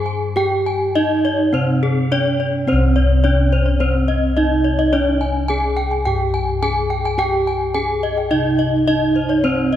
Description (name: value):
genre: Balinese gamelan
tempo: 106 BPM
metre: 4/4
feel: straight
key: C pelog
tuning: A4 = 440 Hz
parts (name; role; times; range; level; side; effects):
- gamelan-type bronze metallophone; melody; 0.0-9.8 s; C4 to Ab4; -20 LUFS; right 2 dB; none
- gamelan-type bossed gongs; bass; 0.0-9.8 s; C2 to G4; -19 LUFS; left 1 dB; none
- gamelan-type bronze metallophone; arpeggios; 0.1-9.8 s; Ab4 to Ab5; -21 LUFS; left 2 dB; none
room: wet concert hall reverb, RT60 2.1 s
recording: recorded in a church or concert hall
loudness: -15 LUFS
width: side -11 dB against mid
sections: 0.0-2.7 A section; 2.7-9.8 B section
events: none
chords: none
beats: | 0.36 0.95 1.53 2.11 | 2.68 3.24 3.80 4.37 | 4.93 5.50 6.06 6.62 | 7.19 7.75 8.31 8.88 | 9.44